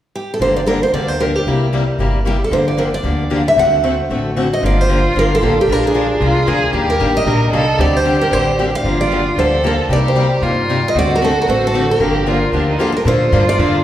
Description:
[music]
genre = acoustic string swing (jazz manouche)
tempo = 228 BPM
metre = 4/4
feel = swing 57% on 8ths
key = G dorian, G minor from 4.6 s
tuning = A4 = 440 Hz
[part]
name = picked steel-string acoustic guitar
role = melody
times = 0.2-13.8 s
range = G4 to F#5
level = -17 LUFS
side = right 1 dB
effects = none
[part]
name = picked acoustic archtop guitar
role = accompaniment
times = 0.4-13.8 s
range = C3 to Bb4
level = -19 LUFS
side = left 2 dB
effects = none
[part]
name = picked old ladder-braced acoustic guitar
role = accompaniment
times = 0.4-13.8 s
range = C3 to Bb4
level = -24 LUFS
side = right 2 dB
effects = none
[part]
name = upright bass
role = bass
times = 0.4-13.8 s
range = G1 to Bb2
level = -19 LUFS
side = equal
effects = none
[part]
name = warm violin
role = second line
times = 4.6-13.8 s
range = D4 to Bb4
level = -20 LUFS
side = right 1 dB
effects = none
[sound]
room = wet recital hall reverb, RT60 1.6 s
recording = recorded in a church or concert hall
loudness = -13 LUFS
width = side -12 dB against mid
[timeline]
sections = 0.4-4.6 A section; 4.6-13.1 B section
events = none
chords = 0.4 Gm7; 1.5 C7; 2.5 Gm7; 3.6 D7; 4.6 Gm7; 5.7 Bb7; 6.7 Ebmaj7; 7.8 D7sus4; 8.8 Gm7; 9.9 Cm7; 11.0 D7; 12.0 Gm7; 13.1 Bbmaj7

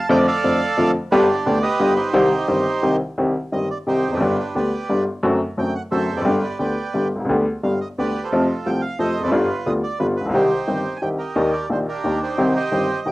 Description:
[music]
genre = tango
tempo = 176 BPM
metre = 3/4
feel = rubato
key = C harmonic minor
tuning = A4 = 441 Hz
[part]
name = bandoneon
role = melody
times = 0.0-13.1 s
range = D4 to Ab5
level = -24 LUFS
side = right 3 dB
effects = cassette tape
[part]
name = clear upright piano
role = accompaniment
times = 0.1-13.1 s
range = G1 to G4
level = -19 LUFS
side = left 1 dB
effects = cassette tape
[sound]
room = moderate studio reverb, RT60 0.6 s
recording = home recording on cassette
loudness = -18 LUFS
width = side -19 dB against mid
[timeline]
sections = 0.0-3.2 A section; 3.2-11.4 B section; 11.4-13.1 C section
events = none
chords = 0.1 Dm/F; 1.1 G; 2.1 Cm; 4.2 G; 5.2 D7/F#; 6.3 G; 8.3 F; 9.3 G7; 10.3 Cm; 11.4 Ebmaj7; 12.4 Cm

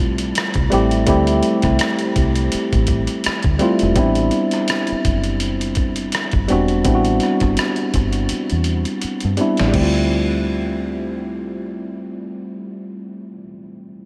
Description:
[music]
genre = R&B, neo-soul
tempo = 83 BPM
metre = 4/4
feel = swing 56% on 16ths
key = D dorian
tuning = A4 = 439 Hz
[part]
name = tine electric piano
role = accompaniment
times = 0.0-14.1 s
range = G3 to G4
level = -22 LUFS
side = equal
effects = none
[part]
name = deep dub fingered electric bass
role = bass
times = 0.0-13.4 s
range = E1 to G2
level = -23 LUFS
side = equal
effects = none
[part]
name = boom bap sampler-style drum kit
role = drums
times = 0.2-9.9 s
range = crash cymbal, hi-hat, kick drum, rim click, snare drum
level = -25 LUFS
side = equal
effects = none
[sound]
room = moderate huge ambient reverb, RT60 8.4 s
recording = dreamy mix soaked in reverb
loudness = -18 LUFS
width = mono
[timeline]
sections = 0.0-9.7 A section; 9.7-12.6 B section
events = drum fill 8.3-9.7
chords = 0.0 Dm9; 4.0 Am9; 9.7 Dm9

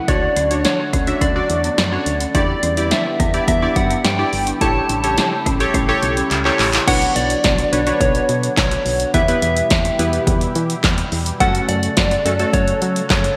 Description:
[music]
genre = synth-pop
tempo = 106 BPM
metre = 4/4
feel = straight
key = B minor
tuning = A4 = 439 Hz
[part]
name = soft struck synth lead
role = melody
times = 0.0-13.4 s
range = C#5 to A5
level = -22 LUFS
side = equal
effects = chorus, slapback echo
[part]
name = sweeping resonant pad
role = sustained chords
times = 0.0-13.4 s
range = B2 to A4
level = -29 LUFS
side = equal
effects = subtle chorus
[part]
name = folk marimba with medium hard mallets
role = arpeggios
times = 0.0-6.8 s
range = B3 to E4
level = -29 LUFS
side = equal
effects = slapback echo, digital delay
[part]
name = warm analog keys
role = accompaniment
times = 0.1-13.0 s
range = A3 to E5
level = -24 LUFS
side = equal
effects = chorus, slapback echo
[part]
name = solid FM bass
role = bass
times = 0.1-13.3 s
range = G1 to F#3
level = -25 LUFS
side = equal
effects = none
[part]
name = punchy analog drum machine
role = drums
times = 0.1-13.4 s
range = crash cymbal, handclaps, hi-hat, kick drum, snare drum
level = -22 LUFS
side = equal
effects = none
[sound]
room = wet lush hall reverb, RT60 2.0 s, digital ambience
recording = big arena sound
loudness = -17 LUFS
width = mono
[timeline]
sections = 0.0-6.9 A section; 6.9-13.4 B section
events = drum fill 6.3-6.9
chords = 0.1 Dmaj7; 2.3 Em7; 4.6 A7; 6.9 Bmadd9; 9.1 Em; 11.4 F#m

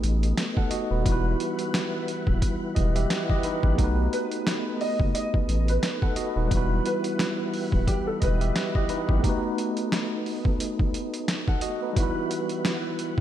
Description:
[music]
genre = hip hop, boom-bap hip-hop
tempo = 88 BPM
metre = 4/4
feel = swing 56% on 16ths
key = E harmonic minor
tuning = A4 = 440 Hz
[part]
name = tine electric piano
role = accompaniment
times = 0.0-13.2 s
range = G3 to F#5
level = -29 LUFS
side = right 1 dB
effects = medium stereo tremolo, cassette tape, high-pass filter, low-pass filter
[part]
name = tonewheel organ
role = sustained chords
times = 0.0-13.2 s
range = E3 to F#5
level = -33 LUFS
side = left 1 dB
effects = chorus vibrato, slow rotary speaker, high-pass filter, low-pass filter
[part]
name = saturated sub bass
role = bass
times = 0.0-9.2 s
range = D1 to B1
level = -25 LUFS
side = equal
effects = none
[part]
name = boom bap sampler-style drum kit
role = drums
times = 0.0-13.2 s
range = hi-hat, kick drum, snare drum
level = -26 LUFS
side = equal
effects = overdrive, vintage 12-bit sampler grit
[part]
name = dark upright piano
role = melody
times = 4.1-8.7 s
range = G4 to D#5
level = -32 LUFS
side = equal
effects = ensemble chorus, high-pass filter, low-pass filter, analog delay
[sound]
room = light reverb, digital ambience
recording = none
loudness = -23 LUFS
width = side -11 dB against mid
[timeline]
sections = 0.0-13.2 A section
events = none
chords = 0.0 B7; 1.1 Emadd9; 3.8 B7; 6.5 Emadd9; 9.2 B7; 12.0 Emadd9

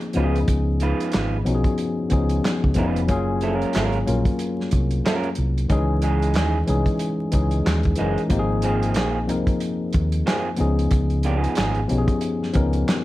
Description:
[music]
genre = R&B, neo-soul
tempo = 92 BPM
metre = 4/4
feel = swing 60% on 16ths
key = unclear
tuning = A4 = 440 Hz
[part]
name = tine electric piano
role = accompaniment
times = 0.0-13.0 s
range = Eb3 to Bb4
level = -23 LUFS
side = left 2 dB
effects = plate reverb
[part]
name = warm soul drum kit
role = drums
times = 0.0-13.0 s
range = handclaps, hi-hat, kick drum, snare drum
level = -24 LUFS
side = equal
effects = none
[part]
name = electric guitar through a small old amp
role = second line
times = 0.2-12.9 s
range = Fb3 to Cb5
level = -27 LUFS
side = right 4 dB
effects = plate reverb
[part]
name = hollow-body short-scale fingered electric bass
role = bass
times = 0.2-12.8 s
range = F1 to Eb2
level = -22 LUFS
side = equal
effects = none
[sound]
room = light reverb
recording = dark, warm production, vinyl crackle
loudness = -19 LUFS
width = side -16 dB against mid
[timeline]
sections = 0.0-13.0 A section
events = none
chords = 0.2 Db9; 3.1 Gbmaj9; 5.7 Dbmadd9; 8.3 Ab69; 10.6 Db9

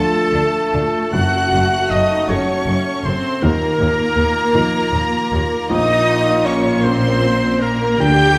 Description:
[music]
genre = cinematic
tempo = 52 BPM (dotted quarters)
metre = 6/8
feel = rubato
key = Bb harmonic minor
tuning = A4 = 444 Hz
[part]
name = rich symphonic violin section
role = melody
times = 0.0-8.4 s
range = A5 to G6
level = -27 LUFS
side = equal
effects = none
[part]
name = clear oboe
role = second line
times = 0.0-8.4 s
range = A4 to G5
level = -26 LUFS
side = equal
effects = none
[part]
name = mellow clarinet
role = second line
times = 0.0-8.4 s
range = A4 to G5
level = -24 LUFS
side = equal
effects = none
[part]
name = rich symphonic violin section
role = second line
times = 0.0-8.4 s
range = A4 to G5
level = -26 LUFS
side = equal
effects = none
[part]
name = bright symphonic viola section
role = accompaniment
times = 0.0-8.4 s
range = A3 to G4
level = -26 LUFS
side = equal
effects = none
[part]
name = felt-muted upright piano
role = accompaniment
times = 0.0-8.4 s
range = Gb1 to Bb4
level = -25 LUFS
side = equal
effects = none
[part]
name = warm French horn section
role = sustained chords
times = 0.0-8.4 s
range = F3 to Gb4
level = -28 LUFS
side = equal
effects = none
[part]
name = clear symphonic cello section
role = bass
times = 0.3-8.4 s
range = Eb2 to D3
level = -25 LUFS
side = equal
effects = none
[part]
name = clear symphonic double bass section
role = bass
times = 0.3-8.4 s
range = Gb1 to Eb2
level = -26 LUFS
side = equal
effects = none
[sound]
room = moderate scoring stage reverb, RT60 2.0 s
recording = none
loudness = -17 LUFS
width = mono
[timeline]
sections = 0.0-8.4 A section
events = none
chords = 0.0 Dm; 1.1 Gbm; 3.4 Ebsus2; 5.7 Bbm

